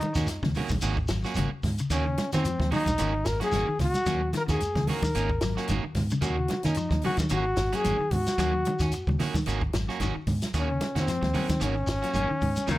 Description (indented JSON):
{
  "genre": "afrobeat",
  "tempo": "111 BPM",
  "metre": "4/4",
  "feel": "swing 56% on 16ths",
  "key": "unclear",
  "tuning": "A4 = 438 Hz",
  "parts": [
    { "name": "warm trombone", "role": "melody", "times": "0.0-12.8 s", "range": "Bb3 to Bb4", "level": "-29 LUFS", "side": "left 1 dB", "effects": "none" },
    { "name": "clean electric guitar", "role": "arpeggios", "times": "0.0-12.8 s", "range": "Db3 to Gb3", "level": "-34 LUFS", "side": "left 4 dB", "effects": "ensemble chorus, slapback echo" },
    { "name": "electric guitar at the edge of break-up", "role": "stabs", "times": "0.0-12.8 s", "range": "Eb3 to Gb4", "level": "-34 LUFS", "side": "right 6 dB", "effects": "none" },
    { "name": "compact cocktail drum kit", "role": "drums", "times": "0.0-12.8 s", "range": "hi-hat, kick drum, snare drum", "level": "-33 LUFS", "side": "equal", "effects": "none" },
    { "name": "congas", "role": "percussion", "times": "0.0-12.8 s", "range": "none", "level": "-33 LUFS", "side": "right 2 dB", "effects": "none" },
    { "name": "shekere", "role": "percussion", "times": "0.0-12.8 s", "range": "none", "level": "-36 LUFS", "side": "left 1 dB", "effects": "none" },
    { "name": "fingered electric bass", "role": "bass", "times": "0.2-12.8 s", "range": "Ab1 to Eb3", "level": "-29 LUFS", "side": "equal", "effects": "none" }
  ],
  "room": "light reverb",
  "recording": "none",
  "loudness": "-24 LUFS",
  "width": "side -16 dB against mid",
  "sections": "0.0-12.8 A section",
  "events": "none",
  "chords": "0.0 Ebm7; 0.8 Ab9sus4; 1.9 Ebm7; 3.0 Ab9sus4; 4.1 Ebm7; 5.1 Ab9sus4; 6.2 Ebm7; 7.3 Ab9sus4; 8.4 Ebm7; 9.5 Ab9sus4; 10.5 Ebm7; 11.6 Ab9sus4"
}